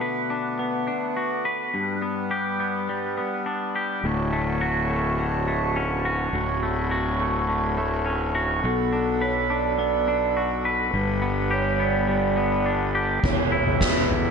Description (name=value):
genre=post-rock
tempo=104 BPM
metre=4/4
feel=straight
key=D major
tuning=A4 = 440 Hz
part: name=hand-pumped harmonium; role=sustained chords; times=0.0-14.3 s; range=D3 to B5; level=-31 LUFS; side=right 2 dB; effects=stereo widening
part: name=twangy electric guitar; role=arpeggios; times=0.0-14.3 s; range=D2 to B4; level=-25 LUFS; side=left 2 dB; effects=digital delay, slapback echo
part: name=fuzz fingered electric bass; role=bass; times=4.0-14.3 s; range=D1 to B1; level=-27 LUFS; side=equal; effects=overdrive
part: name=vibraphone with medium mallets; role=arpeggios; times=8.6-14.3 s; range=A4 to D5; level=-26 LUFS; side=right 5 dB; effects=digital delay, slapback echo
part: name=soft-mallet drum kit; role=drums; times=13.2-14.2 s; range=crash cymbal, kick drum, snare drum, toms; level=-21 LUFS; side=equal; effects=none
room=wet lush hall reverb, RT60 1.7 s, small room ambience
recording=big arena sound, nothing above 10.3 kHz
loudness=-22 LUFS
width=side -5 dB against mid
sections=0.0-4.0 A section; 4.0-13.2 A section; 13.2-14.3 B section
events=none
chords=0.0 Bm7; 1.7 Gmaj7; 4.0 Dmaj7; 8.6 Bm7; 10.9 Gmaj7; 13.2 Em